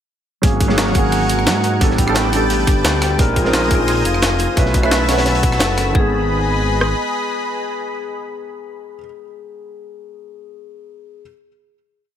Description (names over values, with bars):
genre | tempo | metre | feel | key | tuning
liquid drum and bass | 174 BPM | 4/4 | swing 54% on 16ths | unclear | A4 = 439 Hz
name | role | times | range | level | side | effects
felt-muted upright piano | accompaniment | 0.4-11.2 s | D#3 to B4 | -20 LUFS | right 2 dB | ping-pong delay
lush unison pad | sustained chords | 0.4-9.0 s | G#4 to E6 | -23 LUFS | equal | chorus, sidechain pumping
dark detuned saw bass | bass | 0.4-6.9 s | E#1 to G#2 | -20 LUFS | equal | none
crunchy breakbeat drum kit | drums | 0.4-5.9 s | hi-hat, snare drum | -26 LUFS | equal | high-pass filter on hats, high-pass filter on snare, high-pass filter on room
drum and bass drum kit | drums | 0.4-6.9 s | kick drum, rim click | -16 LUFS | equal | none
jungle sampler-style drum kit | drums | 0.4-5.9 s | hi-hat, rim click, snare drum | -22 LUFS | equal | none
vibraphone with medium mallets | arpeggios | 0.6-6.1 s | E#4 to G5 | -25 LUFS | left 4 dB | ping-pong delay
room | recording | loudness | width
light reverb, small room ambience | none | -14 LUFS | side -9 dB against mid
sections
0.4-5.9 drop; 5.9-8.7 final chord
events
drop 0.4-5.9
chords
0.4 G#9sus4; 1.8 A9sus4; 3.2 A#9sus4; 4.6 B9sus4; 5.9 G#m